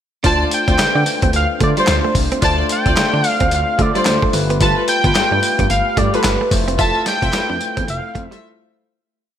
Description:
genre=R&B, new jack swing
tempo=110 BPM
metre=4/4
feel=swing 60% on 16ths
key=D dorian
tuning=A4 = 440 Hz
part: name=bell-like tine electric piano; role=accompaniment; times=0.2-9.0 s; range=A3 to D5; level=-24 LUFS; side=left 4 dB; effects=lush chorus
part: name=direct-recorded clean electric guitar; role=riff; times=0.2-8.4 s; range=G3 to F4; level=-25 LUFS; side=right 6 dB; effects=analog chorus
part: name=warm studio string section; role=stabs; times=0.2-8.4 s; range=F4 to E5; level=-23 LUFS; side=left 1 dB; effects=none
part: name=smooth gliding synth bass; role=bass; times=0.2-8.3 s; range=F1 to D3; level=-21 LUFS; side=equal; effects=none
part: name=dusty soul sampler-style drum kit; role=drums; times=0.2-8.4 s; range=handclaps, hi-hat, kick drum, snare drum, tambourine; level=-19 LUFS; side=equal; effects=overdrive
part: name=octave-doubled lead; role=melody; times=0.3-8.4 s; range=B4 to A5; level=-18 LUFS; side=equal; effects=chorus
room=moderate lush hall reverb, RT60 2.4 s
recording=bright 1980s-style digital production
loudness=-14 LUFS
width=side -9 dB against mid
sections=0.2-9.0 chorus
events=fade-out 6.8-9.0; break 8.4-9.0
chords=0.2 Dm7; 4.3 G9; 6.5 Fmaj7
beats=| 0.24 0.79 1.33 1.88 | 2.42 2.97 3.52 4.06 | 4.61 5.15 5.70 6.24 | 6.79 7.33 7.88 8.43

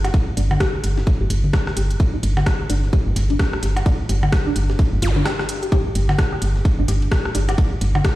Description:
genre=minimal techno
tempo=129 BPM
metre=4/4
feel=swing 60% on 16ths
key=unclear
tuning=A4 = 440 Hz
part: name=resonant blip pluck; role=riff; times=0.0-8.1 s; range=D4 to G4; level=-28 LUFS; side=equal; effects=phaser, lush chorus, sidechain pumping, ping-pong delay
part: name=woody FM bass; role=bass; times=0.0-8.0 s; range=G1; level=-19 LUFS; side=equal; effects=sidechain pumping
part: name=breakbeat sampler-style drum kit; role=drums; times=0.0-8.2 s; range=ride cymbal, snare drum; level=-36 LUFS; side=right 1 dB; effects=high-pass filter on snare, high-pass filter on cymbals
part: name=garage drum kit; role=drums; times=0.0-8.2 s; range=hi-hat, rim click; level=-28 LUFS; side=left 1 dB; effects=none
part: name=electronic percussion blips and toms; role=percussion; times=0.0-8.0 s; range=none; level=-26 LUFS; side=left 1 dB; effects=ping-pong delay
part: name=electronic kick drum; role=drums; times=0.1-8.2 s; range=none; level=-18 LUFS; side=equal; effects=none
part: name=zap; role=sound effects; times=5.0-5.2 s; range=none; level=-31 LUFS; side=equal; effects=none
room=light reverb, digital ambience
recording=played on a big sound system in a bare room, stone room reverb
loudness=-17 LUFS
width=side -16 dB against mid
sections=0.0-8.2 A section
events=filter sweep on synth arpeggio sound 0.0-8.2; break 5.3-5.7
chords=0.0 G5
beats=| 0.14 0.60 1.07 1.53 | 2.00 2.46 2.93 3.40 | 3.86 4.33 4.79 5.25 | 5.72 6.18 6.65 7.12 | 7.58 8.05

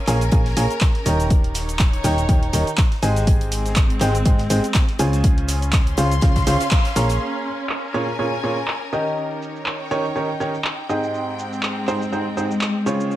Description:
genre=piano house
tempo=122 BPM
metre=4/4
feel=swing 56% on 16ths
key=Ab major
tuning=A4 = 440 Hz
part: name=warm studio string section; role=texture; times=0.0-13.2 s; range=Ab3 to C6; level=-27 LUFS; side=left 1 dB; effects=sidechain pumping
part: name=clear baby grand piano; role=riff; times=0.1-13.2 s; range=Ab2 to Bb5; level=-24 LUFS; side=right 1 dB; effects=sidechain pumping, tape echo
part: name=solid FM bass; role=bass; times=0.1-7.2 s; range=Eb1 to Db2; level=-21 LUFS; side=equal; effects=sidechain pumping
part: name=modern studio drum kit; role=drums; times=0.1-7.2 s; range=hi-hat, snare drum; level=-38 LUFS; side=left 3 dB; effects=none
part: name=punchy analog drum machine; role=drums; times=0.1-13.2 s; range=handclaps, hi-hat, shaker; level=-26 LUFS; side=equal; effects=low-pass filter on hats, low-pass filter on snare, low-pass filter on perc, low-pass filter on room
part: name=electronic kick drum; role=drums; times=0.3-6.8 s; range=none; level=-17 LUFS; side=equal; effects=none
room=light reverb, studio reverb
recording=none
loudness=-18 LUFS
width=side -14 dB against mid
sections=0.0-7.2 A section; 7.2-13.2 B section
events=band accent 6.7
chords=0.0 Bbm7; 1.3 Eb7; 3.0 Abmaj7; 5.2 Dbmaj7; 7.2 Bbm7; 9.2 Eb7; 10.9 Abmaj7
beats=0.32 0.81 | 1.30 1.80 2.29 2.78 | 3.27 3.76 4.26 4.75 | 5.24 5.73 6.22 6.71 | 7.21 7.70 8.19 8.68 | 9.17 9.67 10.16 10.65 | 11.14 11.63 12.12 12.62 | 13.11

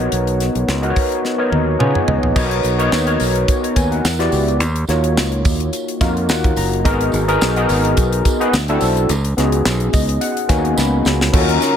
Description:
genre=polished 1980s jazz-funk pop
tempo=107 BPM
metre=4/4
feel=swing 54% on 16ths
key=unclear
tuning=A4 = 440 Hz
part: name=overdriven tine electric piano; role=accompaniment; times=0.0-11.8 s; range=Bb3 to Cb6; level=-17 LUFS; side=left 1 dB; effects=analog chorus
part: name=fingered electric bass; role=bass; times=0.0-11.6 s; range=Gb1 to Db3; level=-19 LUFS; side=equal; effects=none
part: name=tight funk drum kit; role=drums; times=0.0-11.8 s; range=crash cymbal, hi-hat, kick drum, snare drum, toms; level=-20 LUFS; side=equal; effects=none
part: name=tambourine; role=percussion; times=2.4-11.8 s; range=none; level=-32 LUFS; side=right 6 dB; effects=none
part: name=warm chamber string section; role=sustained chords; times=11.3-11.8 s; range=Db3 to Bb4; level=-20 LUFS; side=left 4 dB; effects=none
room=light reverb, studio reverb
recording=none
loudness=-14 LUFS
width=side -8 dB against mid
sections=0.0-2.4 A section; 2.4-11.3 B section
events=drum fill 1.2-2.4, 10.8-11.3; tine electric piano fill 1.5-2.4, 6.0-6.9, 9.7-11.3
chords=0.0 Bmaj7; 1.8 Db7; 2.4 Bmaj7; 4.0 Em7; 4.6 Ebm7; 6.9 Abm9; 8.5 D9; 9.1 Db7sus4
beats=| 0.12 0.68 1.24 1.80 | 2.36 2.92 3.48 4.05 | 4.61 5.17 5.73 6.29 | 6.85 7.41 7.97 8.53 | 9.09 9.65 10.22 10.78 | 11.34

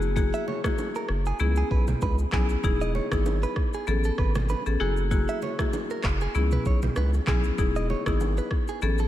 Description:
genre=afrobeats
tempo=97 BPM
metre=4/4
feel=swing 55% on 16ths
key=E major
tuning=A4 = 438 Hz
part: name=marimba with hard mallets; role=accompaniment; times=0.0-9.1 s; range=A#3 to A4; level=-30 LUFS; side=left 5 dB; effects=none
part: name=saturated sub bass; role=bass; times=0.0-9.1 s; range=E1 to C#2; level=-26 LUFS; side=equal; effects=none
part: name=afro-pop drum kit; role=drums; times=0.0-9.1 s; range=handclaps, kick drum, rim click, shaker, toms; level=-28 LUFS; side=equal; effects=vintage 12-bit sampler grit
part: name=congas and bongos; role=percussion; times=0.2-9.0 s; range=none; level=-37 LUFS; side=right 4 dB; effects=none
part: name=direct-recorded clean electric guitar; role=riff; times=0.3-9.1 s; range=G#4 to E5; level=-35 LUFS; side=right 6 dB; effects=diffuse ambient delay
room=light reverb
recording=none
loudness=-23 LUFS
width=side -13 dB against mid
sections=0.0-9.1 A section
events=none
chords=0.0 F#9; 1.4 C#m7; 2.6 Emaj7; 3.9 Amaj9; 4.8 F#9; 6.3 C#m7; 7.6 Emaj7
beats=| 0.16 0.78 1.40 2.02 | 2.64 3.26 3.88 4.49 | 5.11 5.73 6.35 6.97 | 7.59 8.21 8.82

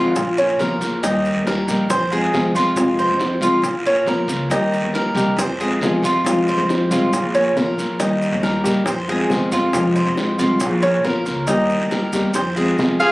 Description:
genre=latin, Cuban son and guajira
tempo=138 BPM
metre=4/4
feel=straight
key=F minor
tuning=A4 = 439 Hz
part: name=flamenco guitar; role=accompaniment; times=0.0-13.1 s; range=C3 to G4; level=-20 LUFS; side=left 1 dB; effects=none
part: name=Cuban tres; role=arpeggios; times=0.0-13.1 s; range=Db4 to C5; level=-20 LUFS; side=right 1 dB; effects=none
part: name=upright bass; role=bass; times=0.0-13.1 s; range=Ab1 to F2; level=-25 LUFS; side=equal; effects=none
part: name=bongos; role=percussion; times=0.2-13.1 s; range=none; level=-26 LUFS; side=left 1 dB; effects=none
part: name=guiro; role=percussion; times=0.2-13.1 s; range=none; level=-29 LUFS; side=equal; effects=none
part: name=maracas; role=percussion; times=0.2-13.1 s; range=none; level=-32 LUFS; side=right 1 dB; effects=none
part: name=clear clarinet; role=melody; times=13.0-13.1 s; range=F5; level=-14 LUFS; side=equal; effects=none
part: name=growling trumpet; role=second line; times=13.0-13.1 s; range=Ab4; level=-17 LUFS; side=right 1 dB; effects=none
room=moderate booth ambience, RT60 0.2 s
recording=recorded on a phone in the room, club reverb, compression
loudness=-16 LUFS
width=side -19 dB against mid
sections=0.0-13.1 A section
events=none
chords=0.2 Bbm; 1.0 Eb; 1.9 Fm; 3.6 Bbm; 4.5 Eb; 5.4 Fm; 7.1 Bbm; 8.0 Eb; 8.9 Fm; 10.6 Bbm; 11.5 Eb; 12.4 Fm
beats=0.16 0.59 | 1.03 1.47 1.90 2.33 | 2.77 3.21 3.64 4.08 | 4.51 4.95 5.38 5.82 | 6.25 6.69 7.12 7.56 | 8.00 8.43 8.87 9.30 | 9.74 10.17 10.61 11.04 | 11.48 11.92 12.35 12.79

